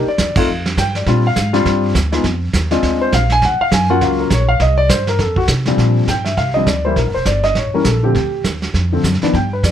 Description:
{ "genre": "jazz piano trio", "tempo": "203 BPM", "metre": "4/4", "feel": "swing 60% on 8ths", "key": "Bb major", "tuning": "A4 = 441 Hz", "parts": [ { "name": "warm grand piano", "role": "melody", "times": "0.0-9.7 s", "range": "Bb2 to Ab5", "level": "-16 LUFS", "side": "left 2 dB", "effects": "none" }, { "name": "upright bass", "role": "bass", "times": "0.0-9.7 s", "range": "E1 to C3", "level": "-17 LUFS", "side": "right 1 dB", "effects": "none" }, { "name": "vintage brush drum kit", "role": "drums", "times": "0.2-9.7 s", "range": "brushed snare drum, crash cymbal, hi-hat, kick drum, snare drum", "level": "-20 LUFS", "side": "right 3 dB", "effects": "none" } ], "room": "light reverb", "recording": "none", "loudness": "-13 LUFS", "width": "side -10 dB against mid", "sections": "0.0-5.8 A section; 5.8-9.7 B section", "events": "band accent 0.3", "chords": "0.5 Fsus2; 1.1 Bb69; 2.2 Fm7; 2.8 Bb7; 3.4 Ebm9; 4.6 C5; 5.2 F5; 5.8 Bb69; 7.0 Edim; 7.6 A7b9; 8.1 Dm" }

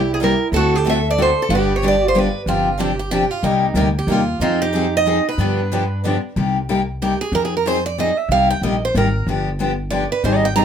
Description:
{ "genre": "acoustic string swing (jazz manouche)", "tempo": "185 BPM", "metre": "3/4", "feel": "swing 61% on 8ths", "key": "C minor", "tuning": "A4 = 440 Hz", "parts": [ { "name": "picked steel-string acoustic guitar", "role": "melody", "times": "0.0-2.4, 4.4-6.0 s", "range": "F4 to E5", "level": "-19 LUFS", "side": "right 2 dB", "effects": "none" }, { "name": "picked steel-string acoustic guitar", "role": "second line", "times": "0.0-10.6 s", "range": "D4 to Bb5", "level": "-21 LUFS", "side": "right 5 dB", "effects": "none" }, { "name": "upright bass", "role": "bass", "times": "0.0-10.6 s", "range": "G1 to G2", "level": "-22 LUFS", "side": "equal", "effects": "none" }, { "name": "picked steel-string acoustic guitar", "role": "accompaniment", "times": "0.2-10.6 s", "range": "C3 to A4", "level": "-20 LUFS", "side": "left 4 dB", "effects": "none" }, { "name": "picked steel-string acoustic guitar", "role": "accompaniment", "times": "0.2-6.2, 10.2-10.6 s", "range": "C3 to A4", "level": "-26 LUFS", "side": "right 4 dB", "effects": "none" } ], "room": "moderate studio ambience, RT60 0.5 s", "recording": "none", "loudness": "-16 LUFS", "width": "side -8 dB against mid", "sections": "0.0-6.4 A section; 6.4-10.6 B section", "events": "steel-string acoustic guitar solo 6.4-10.6", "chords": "0.0 C7; 0.5 D7; 1.5 G; 2.5 G7sus4; 3.4 Cm7; 4.4 Fm7; 5.4 G7; 6.4 Cm7; 7.3 Fm7; 8.3 Cm7; 9.3 G7" }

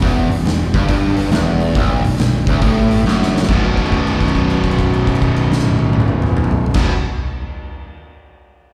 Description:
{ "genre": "blues rock power trio and southern rock", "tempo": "139 BPM", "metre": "4/4", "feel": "swing 66% on 8ths", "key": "unclear", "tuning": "A4 = 438 Hz", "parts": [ { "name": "overdriven electric guitar", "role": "riff", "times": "0.0-6.9 s", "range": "B1 to B2", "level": "-19 LUFS", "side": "equal", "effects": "slapback echo" }, { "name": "fuzz picked electric bass", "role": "bass", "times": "0.0-6.9 s", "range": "B0 to A1", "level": "-22 LUFS", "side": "equal", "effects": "overdrive" }, { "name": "oversized low-tuned drum kit", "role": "drums", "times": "0.0-6.8 s", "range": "crash cymbal, hi-hat, kick drum, snare drum, toms", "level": "-21 LUFS", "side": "equal", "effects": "none" } ], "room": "small room ambience", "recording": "live gig heard through the venue's PA, recital hall reverb", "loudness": "-16 LUFS", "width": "mono", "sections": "0.0-3.5 A section; 3.5-6.9 B section", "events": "drum fill 3.0-3.5; held note 3.5-6.7", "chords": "0.0 Em; 1.8 Bm; 2.6 F#m; 3.5 B5" }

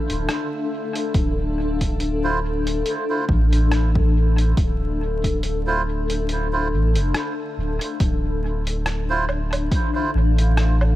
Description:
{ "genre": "ambient dub", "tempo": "70 BPM", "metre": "4/4", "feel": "swing 56% on 16ths", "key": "D minor", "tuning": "A4 = 442 Hz", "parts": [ { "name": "granular cloud pad", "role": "sustained chords", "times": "0.0-11.0 s", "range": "D4 to F5", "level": "-26 LUFS", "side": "left 3 dB", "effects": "built-in reverb" }, { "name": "warm sub bass", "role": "bass", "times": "0.1-11.0 s", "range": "D1 to A1", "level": "-20 LUFS", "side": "equal", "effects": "none" }, { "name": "lo-fi sampler-style drum kit", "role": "drums", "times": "0.1-11.0 s", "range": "hi-hat, rim click, woodblock", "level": "-30 LUFS", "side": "right 1 dB", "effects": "dub echo" }, { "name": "electronic kick drum", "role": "drums", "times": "1.1-9.9 s", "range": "none", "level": "-22 LUFS", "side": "equal", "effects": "overdrive" }, { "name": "melodica", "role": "stabs", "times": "2.2-10.1 s", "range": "E4 to C5", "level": "-28 LUFS", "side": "right 3 dB", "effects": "dub echo" } ], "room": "digital ambience", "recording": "vinyl crackle", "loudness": "-19 LUFS", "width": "side -15 dB against mid", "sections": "0.0-8.0 A section; 8.0-11.0 B section", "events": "kick drops out 6.3-8.0", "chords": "0.0 Dmadd9" }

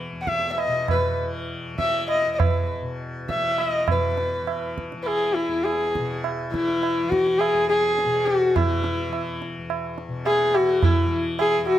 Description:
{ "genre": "indian classical, Hindustani", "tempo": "103 BPM", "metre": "4/4", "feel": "uneven beats", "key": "E raga hamsadhwani", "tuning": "A4 = 445 Hz", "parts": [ { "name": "tanpura", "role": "drone", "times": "0.0-11.8 s", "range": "E2 to E3", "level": "-32 LUFS", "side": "left 2 dB", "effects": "none" }, { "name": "warm sarangi", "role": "melody", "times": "0.2-11.8 s", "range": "E4 to F#5", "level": "-22 LUFS", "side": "left 1 dB", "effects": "none" }, { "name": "tabla", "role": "percussion", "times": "0.3-11.8 s", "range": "none", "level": "-26 LUFS", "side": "right 4 dB", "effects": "none" } ], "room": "light reverb", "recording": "close, detailed microphones", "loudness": "-21 LUFS", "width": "side -12 dB against mid", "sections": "0.0-3.9 A section; 3.9-11.8 B section", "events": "speeding up 0.0-11.8", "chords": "none" }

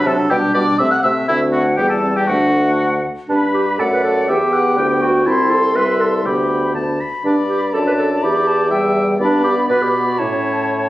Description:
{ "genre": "quick classical-period movement for wind quintet", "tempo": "122 BPM", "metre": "2/4", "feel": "straight", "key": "G major", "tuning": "A4 = 439 Hz", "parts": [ { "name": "clear oboe", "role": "second line", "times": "0.0-10.9 s", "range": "E4 to B5", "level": "-22 LUFS", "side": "left 1 dB", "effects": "none" }, { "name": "clear French horn", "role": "accompaniment", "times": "0.0-10.9 s", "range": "F#3 to E4", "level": "-23 LUFS", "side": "left 1 dB", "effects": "none" }, { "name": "clear clarinet", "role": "accompaniment", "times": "0.0-10.9 s", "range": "B3 to B4", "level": "-19 LUFS", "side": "right 1 dB", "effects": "none" }, { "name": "silver concert flute", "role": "melody", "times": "0.1-10.9 s", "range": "E5 to F#6", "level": "-21 LUFS", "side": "left 2 dB", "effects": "none" }, { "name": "mellow bassoon", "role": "bass", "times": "0.1-10.9 s", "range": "C2 to C3", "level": "-20 LUFS", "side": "equal", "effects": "none" } ], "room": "light reverb", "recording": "recorded on a phone in the room, club reverb, compression", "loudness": "-14 LUFS", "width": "side -16 dB against mid", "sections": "0.0-3.3 A section; 3.3-10.9 B section", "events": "none", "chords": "0.3 G/B; 0.8 Am/C; 1.3 D7; 1.8 Em; 2.3 D; 3.3 G; 3.8 D/F#; 4.3 Em; 5.3 Am7/C; 6.2 G/D; 6.8 D5; 7.3 G; 7.7 D/F#; 8.2 Em; 9.2 G; 10.2 A" }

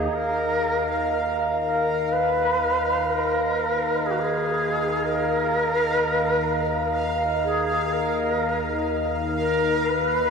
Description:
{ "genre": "dark ambient drone", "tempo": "62 BPM", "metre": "4/4", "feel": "straight", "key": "unclear", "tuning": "A4 = 440 Hz", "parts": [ { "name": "shakuhachi", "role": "melody", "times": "0.0-10.3 s", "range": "Gb4 to Cb5", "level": "-23 LUFS", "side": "equal", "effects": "shimmer reverb, ping-pong delay" }, { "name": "dark analog pad", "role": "sustained chords", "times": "0.0-10.3 s", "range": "Eb5 to Bb5", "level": "-27 LUFS", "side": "right 1 dB", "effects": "chorus, phaser, shimmer reverb" }, { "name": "bowed-like drone", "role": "drone", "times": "0.0-10.3 s", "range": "Eb2 to Eb3", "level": "-31 LUFS", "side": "left 2 dB", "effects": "built-in reverb" }, { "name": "bubbling stepped-filter texture", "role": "texture", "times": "0.3-10.3 s", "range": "F5", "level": "-32 LUFS", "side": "right 1 dB", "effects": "chorus, built-in reverb, shimmer reverb" } ], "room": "wet cathedral reverb, RT60 6.2 s", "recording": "in a vast, echoing space, cassette tape", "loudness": "-21 LUFS", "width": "side -5 dB against mid", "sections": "0.1-10.3 A section", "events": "fade-in on synth drone 0.1-10.3", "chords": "0.1 Ebsus2" }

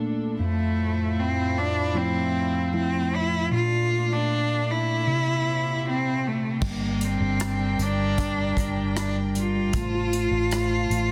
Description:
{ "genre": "pop ballad", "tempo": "77 BPM", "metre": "4/4", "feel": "straight", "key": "F major", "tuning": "A4 = 441 Hz", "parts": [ { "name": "mellow tine electric piano", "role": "accompaniment", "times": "0.0-11.1 s", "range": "F2 to F4", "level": "-29 LUFS", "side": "equal", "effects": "none" }, { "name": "warm studio string section", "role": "sustained chords", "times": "0.0-11.1 s", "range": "A2 to A5", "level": "-36 LUFS", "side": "equal", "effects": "none" }, { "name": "clear cello", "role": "melody", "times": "0.4-11.1 s", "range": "A3 to F4", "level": "-29 LUFS", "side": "equal", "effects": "none" }, { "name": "vintage muted fingered electric bass", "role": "bass", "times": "6.6-11.1 s", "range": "G1 to A1", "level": "-30 LUFS", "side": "equal", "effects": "none" }, { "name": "unplugged drum kit", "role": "drums", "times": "6.6-11.1 s", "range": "crash cymbal, hi-hat, kick drum, rim click", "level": "-34 LUFS", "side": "equal", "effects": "soft clipping on snare" } ], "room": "light reverb, small room reverb", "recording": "dense, heavily limited modern master", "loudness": "-25 LUFS", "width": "mono", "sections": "0.0-6.6 A section; 6.6-11.1 B section", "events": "none", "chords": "0.4 Fmaj7; 3.5 Bbmaj7; 5.1 C7; 6.6 Gm; 9.7 F/A" }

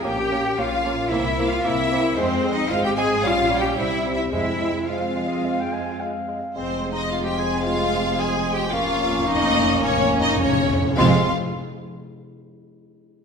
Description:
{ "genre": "quick classical-period movement for symphony orchestra", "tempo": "110 BPM", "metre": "4/4", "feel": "uneven beats", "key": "F minor", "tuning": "A4 = 440 Hz", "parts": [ { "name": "rich studio violin section", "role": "melody", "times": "0.0-11.3 s", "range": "C5 to Ab5", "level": "-27 LUFS", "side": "left 2 dB", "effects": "none" }, { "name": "concert flute", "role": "second line", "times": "0.0-11.3 s", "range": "C5 to Db6", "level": "-30 LUFS", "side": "left 1 dB", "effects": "none" }, { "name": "mellow clarinet", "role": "second line", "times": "0.0-11.2 s", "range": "C4 to Ab5", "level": "-29 LUFS", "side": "equal", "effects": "none" }, { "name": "rich studio violin section", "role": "second line", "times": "0.0-11.3 s", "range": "C4 to Ab5", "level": "-30 LUFS", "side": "left 1 dB", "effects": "none" }, { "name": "mellow bassoon", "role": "accompaniment", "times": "0.0-11.2 s", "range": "G3 to Bb3", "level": "-30 LUFS", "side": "right 2 dB", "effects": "none" }, { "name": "rich studio viola section", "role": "accompaniment", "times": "0.0-11.3 s", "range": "G3 to Db4", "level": "-30 LUFS", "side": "right 1 dB", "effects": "none" }, { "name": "dark French horn section", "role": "sustained chords", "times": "0.0-11.2 s", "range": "G3 to Db4", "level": "-29 LUFS", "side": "left 3 dB", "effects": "none" }, { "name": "rich studio cello section", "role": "bass", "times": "0.0-11.3 s", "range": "F2 to Ab4", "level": "-26 LUFS", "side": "equal", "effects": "none" }, { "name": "rich studio double bass section", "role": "bass", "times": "0.0-11.3 s", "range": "F1 to F2", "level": "-29 LUFS", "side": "right 3 dB", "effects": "none" }, { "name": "timpani", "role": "percussion", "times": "1.1-5.1, 8.7-11.3 s", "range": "F2 to C3", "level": "-29 LUFS", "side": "left 1 dB", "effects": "none" } ], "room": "wet scoring stage reverb, RT60 1.5 s", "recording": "minimal, uncompressed stereo recording", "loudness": "-19 LUFS", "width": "side -6 dB against mid", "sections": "0.0-6.6 A section; 6.6-11.0 B section; 11.0-13.2 C section", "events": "slowing down 5.5-11.0; timpani fill 8.7-11.0", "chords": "0.0 Bbm; 1.1 C7; 2.2 Fm; 3.2 Gdim/Bb; 3.8 C; 4.3 Fm; 8.7 Bbm/F; 11.0 Fm" }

